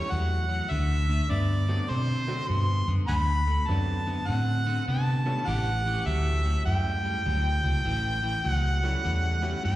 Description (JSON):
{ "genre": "electric blues shuffle", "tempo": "101 BPM", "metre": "4/4", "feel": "swing 64% on 8ths", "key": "unclear", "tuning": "A4 = 440 Hz", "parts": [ { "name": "clear harmonica", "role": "melody", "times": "0.0-9.8 s", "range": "C5 to C6", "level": "-30 LUFS", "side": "equal", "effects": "overdrive, plate reverb, slapback echo" }, { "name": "bright upright piano", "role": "accompaniment", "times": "0.0-9.6 s", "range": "F#3 to A4", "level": "-38 LUFS", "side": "right 4 dB", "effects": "plate reverb, slapback echo" }, { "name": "electric guitar at the edge of break-up", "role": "riff", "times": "0.0-9.8 s", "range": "A2 to C4", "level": "-34 LUFS", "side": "left 3 dB", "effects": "slapback echo" }, { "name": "vintage muted fingered electric bass", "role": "bass", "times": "0.1-9.8 s", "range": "A1 to C3", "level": "-26 LUFS", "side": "equal", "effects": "none" }, { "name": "edgy saxophone section", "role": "stabs", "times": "5.5-6.5 s", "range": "A3 to G4", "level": "-38 LUFS", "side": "right 2 dB", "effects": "plate reverb, slapback echo" } ], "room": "light reverb", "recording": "live gig heard through the venue's PA, recital hall reverb", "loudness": "-24 LUFS", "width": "side -15 dB against mid", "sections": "0.0-9.8 A section", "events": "none", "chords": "0.0 A7; 0.7 D7; 5.5 A7" }